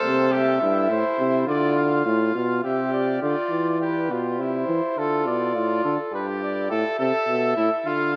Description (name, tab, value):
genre	classical, imitative canzona for brass ensemble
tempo	104 BPM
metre	3/4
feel	straight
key	unclear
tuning	A4 = 440 Hz
part	mellow trumpet	melody	0.0-8.2 s	A4 to F5	-28 LUFS	equal	none
part	clear trumpet	second line	0.0-8.1 s	E4 to A4	-28 LUFS	equal	none
part	mellow euphonium	bass	0.0-8.2 s	G2 to E3	-26 LUFS	equal	none
room	wet cathedral reverb, RT60 4.8 s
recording	in a vast, echoing space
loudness	-23 LUFS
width	mono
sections	0.0-3.2 A section; 3.2-8.2 B section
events	none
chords	0.0 C; 0.9 Am; 1.5 Dm; 2.6 C; 3.2 Bdim/D; 4.4 C; 5.0 Dm; 6.1 G; 6.7 Am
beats	0.32 0.90 | 1.47 2.05 2.63 | 3.22 3.81 4.39 | 4.98 5.56 6.14 | 6.71 7.28 7.86